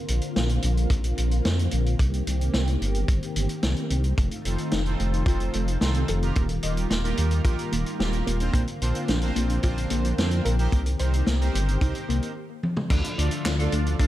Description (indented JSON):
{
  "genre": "synthwave",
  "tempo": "110 BPM",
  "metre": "4/4",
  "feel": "straight",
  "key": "C dorian",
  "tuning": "A4 = 442 Hz",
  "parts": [
    { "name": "analog string pad", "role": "sustained chords", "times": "0.0-14.1 s", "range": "D3 to G4", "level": "-32 LUFS", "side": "left 1 dB", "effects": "ensemble chorus, sidechain pumping" },
    { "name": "dark detuned saw bass", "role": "bass", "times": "0.1-14.1 s", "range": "Eb1 to F2", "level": "-24 LUFS", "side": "equal", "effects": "none" },
    { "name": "vintage drum kit", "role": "drums", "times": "0.1-14.1 s", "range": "crash cymbal, handclaps, hi-hat, snare drum, toms", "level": "-30 LUFS", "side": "equal", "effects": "gated reverb" },
    { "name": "kick drum", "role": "drums", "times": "0.9-14.1 s", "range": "none", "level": "-25 LUFS", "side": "equal", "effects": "none" },
    { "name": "warbly dusty pluck", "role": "arpeggios", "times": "4.2-14.1 s", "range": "A3 to Eb5", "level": "-34 LUFS", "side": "left 2 dB", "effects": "chorus, tape echo" },
    { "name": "analog synth brass", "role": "stabs", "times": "4.4-14.1 s", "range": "Bb3 to F5", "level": "-33 LUFS", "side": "right 3 dB", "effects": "chorus, tape echo" },
    { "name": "electric guitar through a small old amp", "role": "riff", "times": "12.9-14.1 s", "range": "D4 to D5", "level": "-34 LUFS", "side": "left 1 dB", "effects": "analog chorus, tape echo" }
  ],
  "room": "studio ambience",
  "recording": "none",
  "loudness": "-22 LUFS",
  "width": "side -14 dB against mid",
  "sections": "0.0-12.9 A section; 12.9-14.1 B section",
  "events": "stop 12.4-12.9; drum fill 12.6",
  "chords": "0.0 Bbadd9; 2.0 Cm7; 4.2 F7; 6.4 Ebadd9; 8.5 Bbadd9; 10.7 Cm7; 12.9 Dm"
}